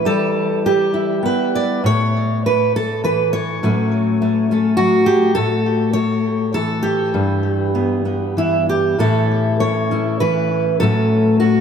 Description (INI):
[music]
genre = folk, solo fingerstyle acoustic guitar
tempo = 101 BPM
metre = 3/4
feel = rubato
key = A mixolydian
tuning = A4 = 440 Hz
[part]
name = fingerpicked steel-string acoustic guitar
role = solo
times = 0.0-11.6 s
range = G2 to D5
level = -15 LUFS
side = equal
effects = wide subtle chorus, ping-pong delay
[sound]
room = wet plate reverb, RT60 2.7 s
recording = dreamy mix soaked in reverb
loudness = -15 LUFS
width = side -7 dB against mid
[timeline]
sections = 0.0-9.0 A section; 9.0-11.6 A section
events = none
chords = 0.0 Em; 1.8 A; 3.6 F#m/A; 5.4 A; 7.1 Em/G; 9.0 A; 10.8 F#m/A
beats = | 0.04 0.63 1.23 | 1.84 2.44 3.04 | 3.62 4.20 4.78 | 5.37 5.96 6.55 | 7.14 7.74 8.36 | 8.98 9.59 10.20 | 10.80 11.39